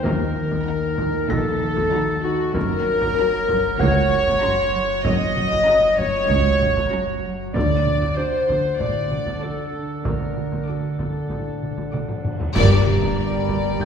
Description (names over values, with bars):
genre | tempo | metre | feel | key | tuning
cinematic, suspense film score | 96 BPM | 4/4 | straight | unclear | A4 = 440 Hz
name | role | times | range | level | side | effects
warm clarinet | second line | 0.0-12.2 s | Gb4 to Eb5 | -22 LUFS | left 1 dB | none
warm studio violin section | second line | 0.0-13.8 s | Gb4 to Eb5 | -27 LUFS | left 1 dB | none
glass harmonica | sustained chords | 0.0-13.8 s | D4 to Bb5 | -33 LUFS | left 1 dB | none
dark studio cello section | riff | 0.0-13.8 s | F#2 to Eb4 | -27 LUFS | equal | none
deep rumbling drone | drone | 0.0-13.8 s | F#1 to Eb2 | -31 LUFS | equal | built-in reverb
felt-muted upright piano | texture | 0.0-7.6, 13.8 s | G4 to Bb6 | -35 LUFS | left 1 dB | none
rich studio double bass section | bass | 0.1-13.8 s | F#1 to Eb2 | -28 LUFS | right 2 dB | none
rich symphonic cello section | bass | 0.1-13.8 s | C#2 to Bb2 | -27 LUFS | right 3 dB | none
taiko ensemble | drums | 0.1-13.8 s | none | -28 LUFS | equal | none
clear studio violin section | melody | 0.7-13.8 s | D5 to D6 | -30 LUFS | left 5 dB | none
warm studio viola section | accompaniment | 0.7-13.8 s | C#4 to Gb5 | -33 LUFS | right 2 dB | none
cymbal swell, clash cymbals and concert bass drum | percussion | 10.1-13.8 s | none | -30 LUFS | equal | none
impact | sound effects | 12.7-13.8 s | none | -31 LUFS | equal | none
warm French horn section | sustained chords | 13.2-13.8 s | G3 to D4 | -25 LUFS | left 2 dB | none
room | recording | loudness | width
wet scoring stage reverb, RT60 2.0 s | heard from further back in the room | -18 LUFS | side -7 dB against mid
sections
0.0-12.6 A section; 12.6-13.8 B section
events
drum fill 11.9-12.6; band accent 12.6-13.2; impact 12.6-13.8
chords
0.0 Ebm; 2.6 F#; 7.6 D; 12.6 Gm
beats
| 0.05 0.68 1.30 1.93 | 2.55 3.18 3.80 4.43 | 5.05 5.68 6.30 6.93 | 7.55 8.18 8.80 9.43 | 10.05 10.68 11.30 11.93 | 12.55 13.18 13.80